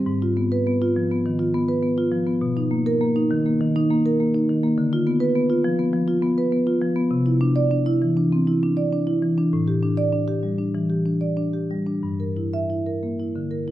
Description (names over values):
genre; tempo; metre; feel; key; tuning
classical, contemporary piece for solo marimba; 90-105 BPM; 4/4; rubato; D dorian from 4.8 s; A4 = 441 Hz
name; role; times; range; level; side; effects
marimba with soft mallets; solo; 0.0-13.7 s; G2 to E5; -19 LUFS; equal; none
room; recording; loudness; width
moderate recital hall reverb, RT60 1.6 s; minimal, uncompressed stereo recording; -19 LUFS; side -14 dB against mid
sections
0.0-13.7 A section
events
none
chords
0.1 Abm6; 2.4 Bmaj7; 4.8 Dm6; 7.1 Cadd9; 9.5 A7sus4; 12.0 Gm6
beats
| 0.07 0.67 1.25 1.83 | 2.41 3.01 3.60 4.20 | 4.77 5.35 5.93 6.52 | 7.11 7.71 8.32 8.93 | 9.53 10.13 10.75 11.38 | 12.04 12.70 13.35